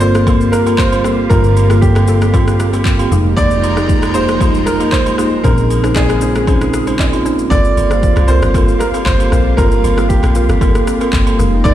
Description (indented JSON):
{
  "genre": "amapiano",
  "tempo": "116 BPM",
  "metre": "4/4",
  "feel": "straight",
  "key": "G phrygian",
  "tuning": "A4 = 440 Hz",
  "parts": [
    { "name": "clear baby grand piano", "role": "melody", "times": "0.0-11.7 s", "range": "G4 to D5", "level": "-19 LUFS", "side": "right 2 dB", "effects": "tape echo" },
    { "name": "mellow tine electric piano", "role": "accompaniment", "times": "0.0-11.7 s", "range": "G3 to C5", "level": "-18 LUFS", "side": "right 4 dB", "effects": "medium stereo tremolo" },
    { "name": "lush unison pad", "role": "sustained chords", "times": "0.0-11.7 s", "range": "Db3 to G5", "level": "-22 LUFS", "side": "equal", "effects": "chorus, sidechain pumping" },
    { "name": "mallet-like synth pluck", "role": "stabs", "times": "0.0-11.7 s", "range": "Bb3 to C5", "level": "-22 LUFS", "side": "left 4 dB", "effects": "chorus, tape echo" },
    { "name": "hollow-body short-scale fingered electric bass", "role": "bass", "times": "0.0-7.5 s", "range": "F1 to Bb1", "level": "-15 LUFS", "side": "equal", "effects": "none" },
    { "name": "deep house drum kit", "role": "drums", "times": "0.0-11.7 s", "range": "handclaps, kick drum, rim click, shaker", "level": "-16 LUFS", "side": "left 1 dB", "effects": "overdrive" },
    { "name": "agogo bells and woodblock", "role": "percussion", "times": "0.3-11.7 s", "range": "none", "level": "-27 LUFS", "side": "right 7 dB", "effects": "none" },
    { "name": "deep log drum bass", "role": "bass", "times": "7.5-11.7 s", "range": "F1 to C2", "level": "-14 LUFS", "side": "equal", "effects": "none" }
  ],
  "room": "light reverb",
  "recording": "played on a big sound system in a bare room, large studio reverb",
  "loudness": "-10 LUFS",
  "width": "side -12 dB against mid",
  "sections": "0.0-11.7 A section",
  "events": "none",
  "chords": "0.0 Gm11; 3.1 Fm11; 5.4 Bbm11; 7.5 Gm11",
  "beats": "0.27 0.79 | 1.31 1.82 2.34 2.86 | 3.38 3.89 4.41 4.93 | 5.44 5.96 6.48 7.00 | 7.51 8.03 8.55 9.06 | 9.58 10.10 10.62 11.13 | 11.65"
}